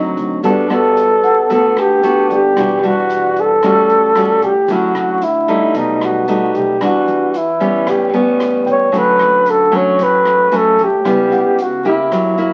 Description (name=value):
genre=bossa nova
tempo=113 BPM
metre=4/4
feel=straight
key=D major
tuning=A4 = 441 Hz
part: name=breathy flugelhorn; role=melody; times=0.0-12.5 s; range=D4 to C#5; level=-15 LUFS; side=equal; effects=none
part: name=dark grand piano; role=accompaniment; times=0.0-3.6, 8.7-12.3 s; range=D5 to G5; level=-29 LUFS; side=equal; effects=none
part: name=nylon-string guitar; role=accompaniment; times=0.0-12.5 s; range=A2 to A4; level=-19 LUFS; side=equal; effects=none
part: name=upright bass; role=bass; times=0.0-12.5 s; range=E1 to F#2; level=-33 LUFS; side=equal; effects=none
part: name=open jazz drum kit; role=drums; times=0.2-12.5 s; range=hi-hat, kick drum, rim click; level=-33 LUFS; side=equal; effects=none
part: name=tube shaker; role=percussion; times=0.2-12.5 s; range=none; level=-53 LUFS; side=equal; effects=none
room=moderate studio reverb, RT60 0.9 s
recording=very old 78 rpm record, vinyl crackle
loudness=-14 LUFS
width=mono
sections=0.0-12.5 A section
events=none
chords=0.4 Gmaj9; 2.6 Em9; 3.6 A6; 4.7 Dmaj9; 5.7 B7b13; 6.8 Em9; 7.9 A9; 8.9 Dmaj7; 11.1 C#m7b5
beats=| 0.44 0.97 1.50 2.03 | 2.56 3.09 3.62 4.15 | 4.68 5.22 5.75 6.28 | 6.81 7.34 7.87 8.40 | 8.93 9.46 9.99 10.53 | 11.06 11.59 12.12